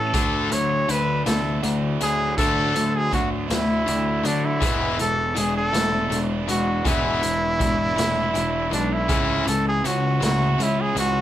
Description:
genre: indie rock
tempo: 54 BPM (dotted quarters)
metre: 6/8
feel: straight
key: unclear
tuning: A4 = 438 Hz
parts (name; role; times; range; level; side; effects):
- clear trumpet; melody; 0.0-11.2 s; D4 to C#5; -23 LUFS; equal; none
- distorted electric guitar; riff; 0.0-11.2 s; C#3 to D4; -26 LUFS; left 4 dB; overdrive
- overdriven electric guitar; riff; 0.0-11.2 s; E2 to E4; -29 LUFS; right 5 dB; none
- fuzz picked electric bass; bass; 0.0-11.2 s; E1 to D3; -27 LUFS; equal; overdrive
- raw garage drum kit; drums; 0.1-11.1 s; hi-hat, kick drum, snare drum; -27 LUFS; equal; none
room: moderate studio ambience, RT60 0.5 s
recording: band playing live in one room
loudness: -19 LUFS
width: side -12 dB against mid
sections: 0.0-11.2 A section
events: none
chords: 0.1 Dadd9; 4.6 E7; 9.1 C#m

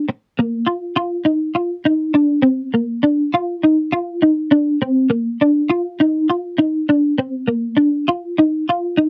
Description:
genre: highlife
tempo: 101 BPM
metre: 4/4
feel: straight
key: Bb major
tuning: A4 = 440 Hz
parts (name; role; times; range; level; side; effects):
- clean electric guitar; solo; 0.0-9.1 s; Bb3 to F4; -18 LUFS; equal; ensemble chorus
room: little or no reverb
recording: dry, close 1970s-style studio recording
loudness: -18 LUFS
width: mono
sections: 0.0-9.1 A section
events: none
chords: none

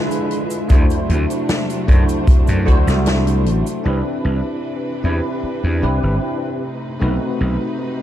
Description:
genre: vaporwave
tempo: 76 BPM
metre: 4/4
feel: straight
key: C lydian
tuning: A4 = 442 Hz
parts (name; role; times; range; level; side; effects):
- bell-like tine electric piano; accompaniment; 0.0-8.0 s; G#3 to C5; -21 LUFS; equal; medium stereo tremolo, ensemble chorus, analog delay
- clear studio string section; sustained chords; 0.0-8.0 s; C3 to E5; -28 LUFS; equal; none
- swinging big-band drum kit; drums; 0.1-3.8 s; cabasa, hi-hat, snare drum; -25 LUFS; left 1 dB; none
- gritty slap bass; bass; 0.7-7.6 s; G1 to F#2; -18 LUFS; equal; overdrive
- kick drum; drums; 0.7-2.8 s; none; -13 LUFS; equal; none
room: light reverb, small room reverb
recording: dark, warm production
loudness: -15 LUFS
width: side -12 dB against mid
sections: 0.0-3.9 A section; 3.9-8.0 B section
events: none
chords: 0.0 E7b9; 0.7 D7; 3.9 Cmaj9; 6.6 B7b9

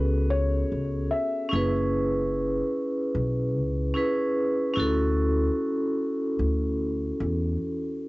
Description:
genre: hip hop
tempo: 74 BPM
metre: 4/4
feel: swing 59% on 16ths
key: unclear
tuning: A4 = 441 Hz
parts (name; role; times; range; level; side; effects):
- felt-muted upright piano; melody; 0.0-1.7 s; B4 to E5; -30 LUFS; left 2 dB; low-pass filter, cassette tape
- vibraphone with hard mallets; accompaniment; 0.0-8.1 s; B3 to B4; -26 LUFS; equal; low-pass filter
- upright bass; bass; 0.0-7.6 s; F#1 to E2; -27 LUFS; equal; none
room: moderate booth ambience, RT60 0.2 s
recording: home recording on cassette, nothing above 7.8 kHz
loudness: -24 LUFS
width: side -21 dB against mid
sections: 0.0-8.1 A section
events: none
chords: 0.0 Bsus2; 1.5 F#9sus4; 4.8 Dmaj9

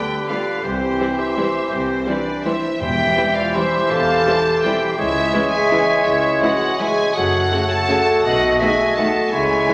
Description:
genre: classical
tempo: 166 BPM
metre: 3/4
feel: uneven beats, rubato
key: C major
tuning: A4 = 440 Hz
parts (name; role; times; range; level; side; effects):
- warm symphonic violin section; melody; 0.0-9.7 s; C5 to A5; -27 LUFS; equal; none
- silver concert flute; second line; 0.0-9.7 s; G4 to F#5; -24 LUFS; equal; none
- warm clarinet; second line; 0.0-9.7 s; E4 to G#4; -30 LUFS; equal; none
- warm oboe; second line; 0.0-9.7 s; B4 to D#5; -28 LUFS; equal; none
- mellow bassoon; accompaniment; 0.0-9.7 s; D3 to A3; -28 LUFS; equal; none
- mellow French horn section; sustained chords; 0.0-9.7 s; C4 to A4; -26 LUFS; equal; none
- warm symphonic violin section; second line; 0.3-9.7 s; G#3 to G4; -34 LUFS; equal; none
- rich symphonic viola section; accompaniment; 0.3-9.7 s; C#3 to A3; -29 LUFS; equal; none
- rich symphonic double bass section; bass; 0.6-9.6 s; E1 to C#2; -33 LUFS; equal; none
- warm symphonic cello section; bass; 0.6-9.6 s; C2 to C#3; -32 LUFS; equal; none
- timpani; percussion; 2.8-3.3 s; E2; -36 LUFS; equal; none
room: wet scoring stage reverb, RT60 1.8 s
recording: none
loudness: -18 LUFS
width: mono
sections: 0.0-9.7 A section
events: none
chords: 0.0 G7/D; 0.6 C; 2.8 C/E; 5.0 C#m; 7.1 F#m; 8.2 B7

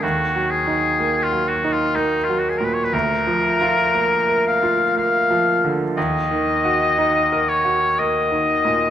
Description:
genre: classical, romantic duo for oboe and grand piano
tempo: 60 BPM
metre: 3/4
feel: rubato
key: Eb minor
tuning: A4 = 440 Hz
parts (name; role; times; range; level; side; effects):
- clear oboe; melody; 0.0-8.9 s; Eb4 to F5; -19 LUFS; left 3 dB; none
- bright grand piano; accompaniment; 0.0-8.9 s; D2 to Bb4; -20 LUFS; right 3 dB; none
room: wet recital hall reverb, RT60 1.6 s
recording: none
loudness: -16 LUFS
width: side -10 dB against mid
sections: 0.0-8.9 A section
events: none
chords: 0.0 Ebm; 2.9 Bb/D; 6.0 Ebm

